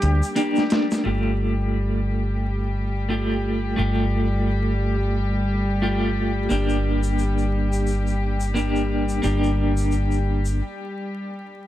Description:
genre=trip hop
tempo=88 BPM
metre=4/4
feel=swing 58% on 16ths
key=unclear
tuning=A4 = 444 Hz
part: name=clean electric guitar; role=accompaniment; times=0.0-10.6 s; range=A3 to G4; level=-25 LUFS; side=right 1 dB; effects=tremolo, low-pass filter, tape echo
part: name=rich chamber string section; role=sustained chords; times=0.0-11.7 s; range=G3 to G4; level=-28 LUFS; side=left 1 dB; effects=none
part: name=deep dub fingered electric bass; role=bass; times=0.0-10.6 s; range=G1 to D2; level=-23 LUFS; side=equal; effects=none
part: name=dusty soul sampler-style drum kit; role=drums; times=0.0-1.0 s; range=hi-hat, snare drum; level=-24 LUFS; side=equal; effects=overdrive
part: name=egg shaker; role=percussion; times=0.2-1.0, 6.5-10.6 s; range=none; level=-39 LUFS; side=left 3 dB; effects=none
room=small room reverb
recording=dark, warm production, vinyl crackle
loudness=-20 LUFS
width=side -13 dB against mid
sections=0.0-1.0 A section; 1.0-11.7 B section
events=break 10.6-11.7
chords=0.0 Gm; 1.0 Fadd9/G; 6.5 Gm

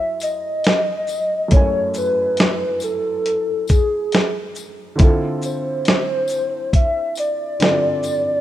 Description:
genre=lo-fi hip hop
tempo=69 BPM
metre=4/4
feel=swing 60% on 16ths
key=unclear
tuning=A4 = 441 Hz
part: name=warbly nostalgic lead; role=melody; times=0.0-8.4 s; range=Ab4 to Fb5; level=-20 LUFS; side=equal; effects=chorus, low-pass filter
part: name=warm upright piano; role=accompaniment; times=0.0-8.4 s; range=Gb2 to Ab5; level=-26 LUFS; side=right 2 dB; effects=cassette tape, low-pass filter
part: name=dusty soul sampler-style drum kit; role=drums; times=0.2-8.3 s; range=hi-hat, kick drum, shaker, snare drum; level=-16 LUFS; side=equal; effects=none
part: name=tambourine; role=percussion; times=0.2-8.3 s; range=none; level=-39 LUFS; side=left 8 dB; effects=none
room=light reverb, digital ambience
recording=rough home demo mix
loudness=-16 LUFS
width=side -13 dB against mid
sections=0.0-8.4 A section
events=none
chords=0.0 Gbm9; 5.0 Dm9

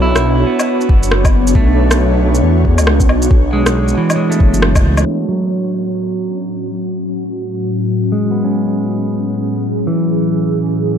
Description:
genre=future garage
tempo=137 BPM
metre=4/4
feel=swing 61% on 16ths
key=F# minor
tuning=A4 = 440 Hz
part: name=electric guitar at the edge of break-up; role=accompaniment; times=0.0-11.0 s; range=E3 to E4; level=-19 LUFS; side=right 2 dB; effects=sidechain pumping, tape echo
part: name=ethereal airy pad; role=sustained chords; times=0.0-11.0 s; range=A2 to C#5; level=-17 LUFS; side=left 1 dB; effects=ensemble chorus, built-in reverb, vintage 12-bit sampler grit, sidechain pumping
part: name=swelling detuned saw bass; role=bass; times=0.0-5.0 s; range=F#1 to E2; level=-14 LUFS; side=equal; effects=tube saturation, sidechain pumping
part: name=electronic rim click, shaker and woodblock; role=drums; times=0.2-10.9 s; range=none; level=-20 LUFS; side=left 1 dB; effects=overdrive, low-pass filter on perc, studio ambience, low-pass filter on snare
part: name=electronic kick drum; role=drums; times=0.9-4.8 s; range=none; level=-12 LUFS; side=equal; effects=overdrive, studio ambience
room=light reverb, digital ambience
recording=dark, warm production, low-pass filter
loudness=-12 LUFS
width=side -8 dB against mid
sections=0.0-5.1 A section; 5.1-11.0 B section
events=filter sweep on clean electric guitar 0.0-5.1; band accent 4.6; filter sweep on drum 5.1-11.0; filter sweep on ambient pad 5.1-11.0; filter sweep 5.1-11.0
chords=0.0 Bmadd9; 5.1 F#madd9

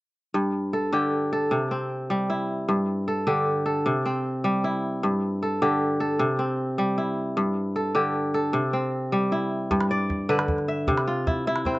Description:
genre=west african traditional, West African string and xylophone music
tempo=103 BPM (dotted quarters)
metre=12/8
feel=straight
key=unclear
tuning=A4 = 440 Hz
part: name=kora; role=arpeggios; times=0.3-11.8 s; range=G2 to E5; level=-23 LUFS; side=equal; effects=none
part: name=calabash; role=percussion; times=9.7-11.8 s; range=none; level=-29 LUFS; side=right 1 dB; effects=none
room=little or no reverb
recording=recorded outdoors, with no room sound, nothing above 7.9 kHz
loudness=-23 LUFS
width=side -19 dB against mid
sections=0.3-9.7 A section; 9.7-11.8 B section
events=none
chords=0.3 G5; 1.5 C; 2.7 G5; 3.9 C; 5.0 G5; 6.2 C; 7.4 G5; 8.5 C; 9.7 G; 10.9 C

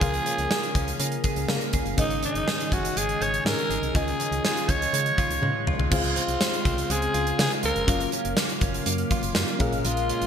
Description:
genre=1980s-style pop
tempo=122 BPM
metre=4/4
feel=straight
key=unclear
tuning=A4 = 440 Hz
part: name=raspy alto saxophone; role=melody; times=0.0-10.3 s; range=Eb4 to Db5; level=-28 LUFS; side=equal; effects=shimmer reverb, ping-pong delay
part: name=FM electric piano with soft pad layer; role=accompaniment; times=0.0-10.3 s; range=Ab2 to F5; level=-32 LUFS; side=left 2 dB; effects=chorus, shimmer reverb
part: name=ensemble organ-string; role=sustained chords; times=0.0-10.3 s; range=Db3 to F5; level=-34 LUFS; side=left 1 dB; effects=ensemble chorus
part: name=direct-recorded clean electric guitar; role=riff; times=0.0-10.3 s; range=Eb3 to Ab4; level=-34 LUFS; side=right 4 dB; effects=analog chorus, shimmer reverb, ping-pong delay
part: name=solid FM bass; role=bass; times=0.0-10.3 s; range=F1 to Db3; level=-30 LUFS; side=equal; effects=none
part: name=gated 80s drum kit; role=drums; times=0.0-10.3 s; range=crash cymbal, hi-hat, kick drum, snare drum, tambourine, toms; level=-26 LUFS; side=equal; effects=none
room=moderate lush hall reverb, RT60 1.8 s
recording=bright 1980s-style digital production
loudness=-22 LUFS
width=side -8 dB against mid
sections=0.0-5.9 A section; 5.9-10.3 B section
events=drum fill 5.4-5.9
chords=0.0 Db6; 2.0 Absus4; 3.9 Dbadd9; 5.9 Dbmaj7; 7.9 Gbmaj7; 9.6 Bbm7

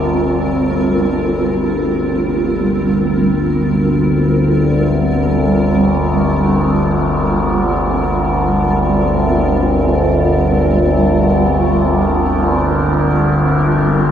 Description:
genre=dark ambient drone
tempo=free time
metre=none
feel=none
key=G minor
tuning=A4 = 440 Hz
part: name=granular cloud pad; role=sustained chords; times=0.0-14.1 s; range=G3 to Bb4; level=-16 LUFS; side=right 1 dB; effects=built-in reverb, shimmer reverb
part: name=overtone-sweeping drone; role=drone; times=0.0-14.1 s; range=G1 to D2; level=-14 LUFS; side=equal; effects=chorus, built-in reverb
room=wet huge ambient reverb, RT60 8.4 s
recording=none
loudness=-12 LUFS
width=side -9 dB against mid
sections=0.0-14.1 A section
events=none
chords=0.0 Gm

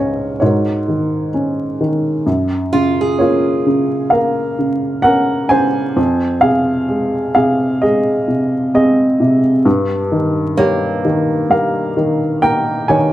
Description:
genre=acoustic folk-pop ballad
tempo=65 BPM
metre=4/4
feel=straight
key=unclear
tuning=A4 = 440 Hz
part: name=warm upright piano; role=melody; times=0.0-13.1 s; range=Db2 to Ab5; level=-13 LUFS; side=equal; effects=none
part: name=picked old ladder-braced acoustic guitar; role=arpeggios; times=2.7-4.6, 10.6-12.2 s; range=Bb3 to Ab4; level=-20 LUFS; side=right 1 dB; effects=none
room=wet small room reverb, RT60 0.5 s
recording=dark, warm production, vinyl crackle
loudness=-13 LUFS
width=side -14 dB against mid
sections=0.0-2.3 A section; 2.3-13.1 B section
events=none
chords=0.4 Ab9sus4; 2.3 Gbmaj7; 6.0 Fm7; 9.7 Eb7/G

